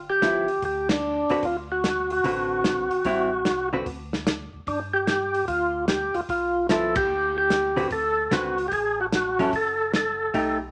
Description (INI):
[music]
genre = soul jazz organ trio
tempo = 148 BPM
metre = 4/4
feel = swing 66% on 8ths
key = unclear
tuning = A4 = 440 Hz
[part]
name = tonewheel organ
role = bass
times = 0.0-10.7 s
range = F#1 to G2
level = -42 LUFS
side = equal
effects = slow rotary speaker
[part]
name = percussive tonewheel organ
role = melody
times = 0.1-10.6 s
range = D4 to A4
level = -26 LUFS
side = equal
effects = slow rotary speaker
[part]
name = hollow-body jazz guitar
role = accompaniment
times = 0.2-3.9, 6.7-10.6 s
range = D3 to B4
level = -29 LUFS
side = equal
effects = none
[part]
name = warm soul drum kit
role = drums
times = 0.2-10.5 s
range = hi-hat, kick drum, ride cymbal, snare drum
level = -30 LUFS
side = equal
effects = none
[sound]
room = moderate studio reverb, RT60 0.8 s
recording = none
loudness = -24 LUFS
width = mono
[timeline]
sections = 0.0-10.7 A section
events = band accent 0.8, 6.9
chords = 0.0 G6; 1.4 D6; 3.0 Am7; 3.9 N.C.; 4.7 G; 7.9 D13; 9.5 F#m